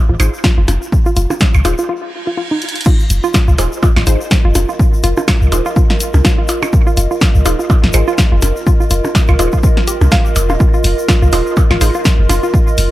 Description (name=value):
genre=minimal techno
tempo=124 BPM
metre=4/4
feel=swing 57% on 16ths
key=F minor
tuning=A4 = 440 Hz
part: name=hollow square pluck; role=riff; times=0.0-12.6 s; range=Eb4 to F5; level=-20 LUFS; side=equal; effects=chorus, cassette tape, sidechain pumping, dub echo
part: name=punchy sub bass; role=bass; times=0.1-12.9 s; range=Eb1 to C2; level=-12 LUFS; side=equal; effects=sidechain pumping
part: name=filtered dub chord stab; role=stabs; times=0.2-11.9 s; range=Eb4 to C5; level=-24 LUFS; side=right 2 dB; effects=phaser, analog delay
part: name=punchy analog drum machine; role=drums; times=0.2-12.9 s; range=crash cymbal, hi-hat, snare drum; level=-19 LUFS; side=equal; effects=none
part: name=egg shaker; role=percussion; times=0.2-12.9 s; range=none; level=-28 LUFS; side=left 5 dB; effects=analog delay
part: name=percussion blips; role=percussion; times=0.2-12.4 s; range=none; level=-22 LUFS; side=right 2 dB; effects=analog delay
part: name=electronic kick drum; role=drums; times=0.4-12.6 s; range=none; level=-12 LUFS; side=equal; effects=none
part: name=reverse cymbal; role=sound effects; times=2.1-2.9 s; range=none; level=-25 LUFS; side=right 5 dB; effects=none
part: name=warbly tape-like pad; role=texture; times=3.2-12.9 s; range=F4 to Eb5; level=-22 LUFS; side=right 1 dB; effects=chorus, built-in reverb, sidechain pumping
room=light reverb, digital ambience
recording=echo-heavy mix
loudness=-10 LUFS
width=side -16 dB against mid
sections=0.0-2.9 A section; 2.9-12.9 B section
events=break 1.9-2.9; reverse cymbal 2.1-2.9; drum fill 2.6; drop 2.9-12.9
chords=0.0 Fm7